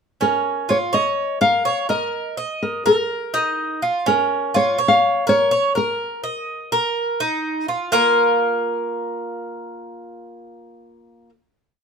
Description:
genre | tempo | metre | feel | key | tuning
latin | 124 BPM | 4/4 | straight | Bb minor | A4 = 442 Hz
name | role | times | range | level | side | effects
nylon-string guitar | melody | 0.2-7.4 s | Bb4 to F5 | -19 LUFS | left 2 dB | none
Cuban tres | arpeggios | 0.2-11.3 s | Bb3 to Eb5 | -20 LUFS | right 2 dB | none
room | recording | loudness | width
light reverb | minimal, uncompressed stereo recording | -18 LUFS | side -6 dB against mid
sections
0.2-7.9 montuno (vamp); 7.9-11.8 final chord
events
none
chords
0.2 Bbm; 2.1 Eb5; 4.1 Bbm; 6.0 Eb5; 7.9 Bb5

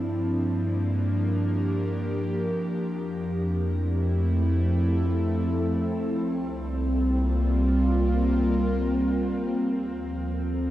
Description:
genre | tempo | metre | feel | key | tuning
ambient | free time | none | none | F major | A4 = 441 Hz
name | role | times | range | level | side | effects
airy breathy pad | sustained chords | 0.0-10.7 s | F3 to Bb4 | -26 LUFS | equal | chorus, shimmer reverb
round analog bass | bass | 0.0-10.7 s | C2 to G2 | -26 LUFS | equal | none
room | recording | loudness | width
wet huge ambient reverb, RT60 8.4 s | worn, warbling old tape, cassette tape, warbly pitch drift | -23 LUFS | side -14 dB against mid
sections
0.0-10.7 A section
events
fade-in on analog synth pad 0.0-10.7; fade-out 7.3-10.7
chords
0.0 Gm7; 2.8 Fmaj7; 6.2 C7sus4; 9.6 Dm7

